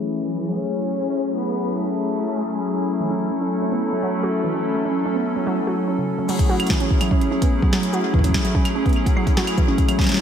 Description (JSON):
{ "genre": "IDM", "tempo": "146 BPM", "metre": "4/4", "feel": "straight", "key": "F# minor", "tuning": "A4 = 440 Hz", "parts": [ { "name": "rich cello", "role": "melody", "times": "0.0-2.8 s", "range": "E3 to C#4", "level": "-27 LUFS", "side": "left 2 dB", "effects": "analog delay" }, { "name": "hollow soft pad", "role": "sustained chords", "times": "0.0-10.2 s", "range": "F#3 to A4", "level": "-23 LUFS", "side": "left 1 dB", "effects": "chorus, sidechain pumping" }, { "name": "warbly dusty pluck", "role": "arpeggios", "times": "3.0-10.0 s", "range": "C#3 to F#4", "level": "-24 LUFS", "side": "right 2 dB", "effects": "chorus, ping-pong delay" }, { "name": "booming analog drum machine", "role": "drums", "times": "6.3-10.2 s", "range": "cabasa, claves, crash cymbal, hi-hat, snare drum", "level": "-26 LUFS", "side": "equal", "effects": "low-pass filter on perc, low-pass filter on hats, low-pass filter on snare, low-pass filter on cymbals, ping-pong delay" }, { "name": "electronic kick drum", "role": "drums", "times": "6.4-10.1 s", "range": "none", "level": "-19 LUFS", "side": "equal", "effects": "none" } ], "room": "moderate lush hall reverb, RT60 1.6 s, digital ambience", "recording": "dreamy mix soaked in reverb, low-pass filter", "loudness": "-18 LUFS", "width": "side -8 dB against mid", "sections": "0.0-6.3 A section; 6.3-10.2 B section", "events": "filter sweep 0.0-6.3", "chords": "0.0 F#m9" }